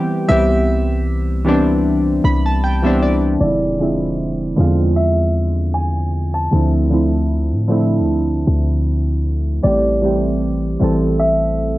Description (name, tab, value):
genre	contemporary R&B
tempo	77 BPM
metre	4/4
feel	swing 54% on 16ths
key	unclear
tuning	A4 = 438 Hz
part	bright grand piano	melody	0.0-11.8 s	D5 to A5	-22 LUFS	equal	cassette tape
part	warm analog keys	accompaniment	0.0-11.8 s	D3 to B5	-17 LUFS	right 1 dB	chorus, cassette tape
part	warm 808-style bass	bass	0.3-11.8 s	E1 to A2	-18 LUFS	equal	none
room	light reverb, studio ambience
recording	home recording on cassette, low-pass filter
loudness	-14 LUFS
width	side -17 dB against mid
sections	0.0-3.4 A section; 3.4-11.8 B section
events	synth keys fill 1.9-3.4; filter sweep 3.4-11.8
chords	0.0 Cmaj7; 3.4 E7b9b13; 6.5 Dm9; 9.6 Am7